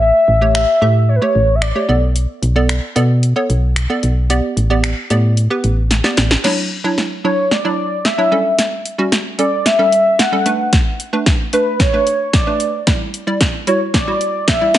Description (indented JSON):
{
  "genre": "dance-pop",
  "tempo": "112 BPM",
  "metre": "4/4",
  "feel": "straight",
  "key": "D major",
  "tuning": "A4 = 441 Hz",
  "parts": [
    { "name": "warm velvety synth lead", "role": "melody", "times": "0.0-2.0, 7.2-14.8 s", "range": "B4 to F#5", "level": "-15 LUFS", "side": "left 1 dB", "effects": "chorus, digital delay" },
    { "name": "hollow square pluck", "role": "accompaniment", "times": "0.0-14.8 s", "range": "F#3 to E5", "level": "-20 LUFS", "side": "right 2 dB", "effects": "chorus, sidechain pumping" },
    { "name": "solid FM bass", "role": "bass", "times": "0.0-6.4 s", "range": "A1 to B2", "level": "-14 LUFS", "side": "equal", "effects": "sidechain pumping" },
    { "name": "deep house drum kit", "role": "drums", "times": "0.5-14.8 s", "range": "crash cymbal, finger snaps, hi-hat, kick drum, snare drum", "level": "-17 LUFS", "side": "equal", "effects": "none" }
  ],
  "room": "light reverb, digital ambience",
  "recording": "high-pass filter, nothing above 10.8 kHz",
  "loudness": "-13 LUFS",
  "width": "side -12 dB against mid",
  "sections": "0.0-6.4 A section; 6.4-14.8 B section",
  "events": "drum fill 5.9-6.4, 6.4-14.8; build-up 6.4-14.8",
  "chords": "0.0 A7; 1.9 Bm7; 4.3 A9sus4; 6.4 Dmaj9; 8.3 A7; 10.5 Bm7; 12.9 Em7"
}